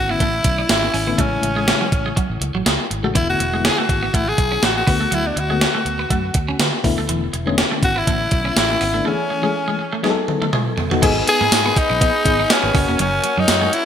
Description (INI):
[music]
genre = 1980s-style pop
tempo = 122 BPM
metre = 4/4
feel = swing 55% on 16ths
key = E mixolydian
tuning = A4 = 444 Hz
[part]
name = raspy tenor saxophone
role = melody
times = 0.0-13.8 s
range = C#4 to G#4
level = -20 LUFS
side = left 1 dB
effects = none
[part]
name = FM electric piano with tremolo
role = accompaniment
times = 0.0-13.8 s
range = C#3 to A4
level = -24 LUFS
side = left 5 dB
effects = none
[part]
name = vintage muted fingered electric bass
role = bass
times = 0.0-13.7 s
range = E1 to D3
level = -25 LUFS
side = right 1 dB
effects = none
[part]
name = twelve-string electric guitar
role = riff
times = 0.1-13.8 s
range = E3 to D#4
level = -26 LUFS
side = right 3 dB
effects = lush chorus, digital delay
[part]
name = gated 80s digital drum machine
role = drums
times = 0.2-13.8 s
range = crash cymbal, hi-hat, kick drum, snare drum, tambourine, toms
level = -19 LUFS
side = right 1 dB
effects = gated reverb, gated reverb snare, overdrive
[part]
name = chorused pulse-width pad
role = sustained chords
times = 11.0-13.8 s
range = G#4 to C#6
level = -26 LUFS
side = equal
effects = none
[sound]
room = moderate plate reverb, RT60 2.0 s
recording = bright 1980s-style digital production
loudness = -16 LUFS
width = side -9 dB against mid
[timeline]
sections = 0.0-11.0 A section; 11.0-13.8 B section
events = drum fill 10.0-11.0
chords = 0.0 E7sus4; 1.2 Amaj7; 3.2 E7sus4; 4.9 Bm7/D; 6.8 E7sus4; 9.1 Amaj7; 10.0 B7; 11.0 G#m; 12.7 F#